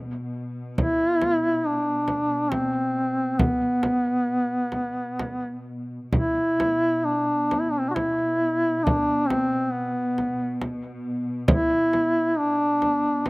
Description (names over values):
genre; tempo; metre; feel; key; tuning
caucasian folk, Caucasian lament; 67 BPM; 3/4; uneven beats, rubato; B phrygian; A4 = 440 Hz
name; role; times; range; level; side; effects
muted symphonic cello section; drone; 0.0-13.3 s; B2; -33 LUFS; equal; none
warm duduk; melody; 0.8-13.3 s; B3 to F#4; -22 LUFS; equal; slapback echo
frame drum; percussion; 0.8-13.3 s; none; -24 LUFS; equal; none
room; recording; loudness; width
light reverb; recorded outdoors, with no room sound; -21 LUFS; side -26 dB against mid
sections
0.0-6.1 A section; 6.1-13.3 B section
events
none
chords
none